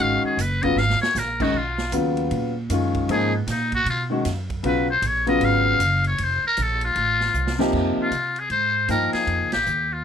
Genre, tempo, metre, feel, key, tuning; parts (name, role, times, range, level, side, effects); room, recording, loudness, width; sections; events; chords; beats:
modal jazz; 155 BPM; 4/4; swing 63% on 8ths; G# dorian; A4 = 442 Hz
trumpet with metal mute; melody; 0.0-10.0 s; B3 to E#5; -22 LUFS; left 2 dB
warm concert grand piano; accompaniment; 0.0-9.5 s; C3 to G5; -22 LUFS; left 2 dB
upright bass; bass; 0.0-10.0 s; F1 to C3; -26 LUFS; right 1 dB
vintage drum kit; drums; 0.0-9.8 s; crash cymbal, hi-hat, kick drum, ride cymbal, snare drum; -33 LUFS; right 4 dB
light reverb; -19 LUFS; side -8 dB against mid
0.0-7.7 A section; 7.7-10.0 B section
muted trumpet solo 0.0-7.7; drum fill 0.8-1.2, 7.3-7.7; band accent 9.5
0.0 G#m11; 6.2 F; 7.7 Bb9sus4
| 0.01 0.39 0.78 1.16 | 1.55 1.94 2.32 2.71 | 3.09 3.48 3.87 4.25 | 4.64 5.03 5.41 5.80 | 6.18 6.57 6.96 7.34 | 7.73 8.12 8.51 8.89 | 9.28 9.67